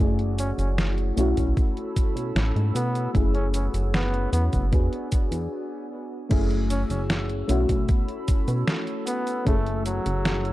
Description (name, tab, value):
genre	vaporwave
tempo	76 BPM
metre	4/4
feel	straight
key	F# minor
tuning	A4 = 441 Hz
part	mellow FM electric piano	accompaniment	0.0-10.5 s	A3 to G#4	-29 LUFS	left 2 dB	lush chorus, analog delay
part	warbly tape-like pad	sustained chords	0.0-10.5 s	F#4 to E6	-37 LUFS	right 2 dB	chorus, built-in reverb, vintage 12-bit sampler grit
part	chorused synth bass	bass	0.0-10.5 s	F#1 to B2	-25 LUFS	equal	none
part	detuned 8-bit digital drum machine	drums	0.2-10.5 s	cabasa, crash cymbal, hi-hat, snare drum	-30 LUFS	equal	none
part	warm flugelhorn	melody	0.4-10.5 s	F#3 to C#4	-32 LUFS	equal	tape echo
part	electronic kick drum	drums	1.4-9.6 s	none	-22 LUFS	equal	none
room	little or no reverb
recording	dark, warm production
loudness	-22 LUFS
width	side -16 dB against mid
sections	0.0-6.3 A section; 6.3-10.5 B section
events	stop 5.5-6.3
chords	0.0 F#m7; 1.2 B9sus4; 3.2 F#m7; 4.7 E9; 6.3 F#m7; 7.5 B9sus4; 9.5 F#m7